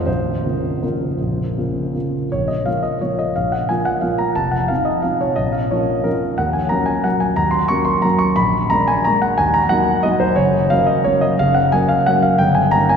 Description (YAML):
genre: classical, piano waltz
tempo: 154-191 BPM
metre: 3/4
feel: rubato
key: Bb minor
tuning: A4 = 440 Hz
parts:
  - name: warm concert grand piano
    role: solo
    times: 0.0-13.0 s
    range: F1 to Db6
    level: -15 LUFS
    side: equal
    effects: none
room: wet cathedral reverb, RT60 6.2 s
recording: heard from further back in the room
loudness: -15 LUFS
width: side -7 dB against mid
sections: 0.0-2.3 A section; 2.3-13.0 A section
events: none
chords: 0.1 Bbm; 2.3 Bb5; 4.4 F5; 5.4 Bbm; 6.4 Ebm7; 8.4 Bb7; 9.4 Ebm; 10.4 Gb; 12.4 Eb7/G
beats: | 0.07 0.45 0.83 | 1.21 1.58 1.95 | 2.33 2.67 3.02 | 3.36 3.69 4.03 | 4.37 4.70 5.05 | 5.39 5.72 6.06 | 6.39 6.71 7.05 | 7.38 7.71 8.04 | 8.38 8.71 9.05 | 9.38 9.70 10.04 | 10.38 10.71 11.05 | 11.39 11.73 12.07 | 12.41 12.74